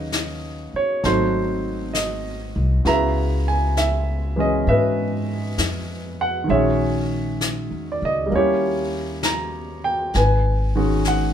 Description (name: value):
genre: jazz ballad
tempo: 66 BPM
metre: 4/4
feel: swing 68% on 8ths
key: G# minor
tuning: A4 = 440 Hz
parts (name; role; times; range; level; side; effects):
- warm baby grand piano; accompaniment; 0.0-11.3 s; C#3 to A#5; -21 LUFS; right 1 dB; none
- upright bass; bass; 0.0-11.3 s; G#1 to G#2; -24 LUFS; equal; none
- jazz brush drum kit; drums; 0.1-11.3 s; brushed snare drum, hi-hat, snare drum; -28 LUFS; left 4 dB; none
room: moderate studio reverb, RT60 0.7 s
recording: minimal, uncompressed stereo recording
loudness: -19 LUFS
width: side -9 dB against mid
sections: 0.0-11.3 A section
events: none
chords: 0.0 Badd9/D#; 1.0 G#7b9; 2.8 C#m7; 6.5 A#m7b5; 8.3 D#7b9; 10.1 G#m7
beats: 0.12 1.03 1.94 | 2.85 3.76 4.67 5.58 | 6.48 7.39 8.30 9.22 | 10.13 11.04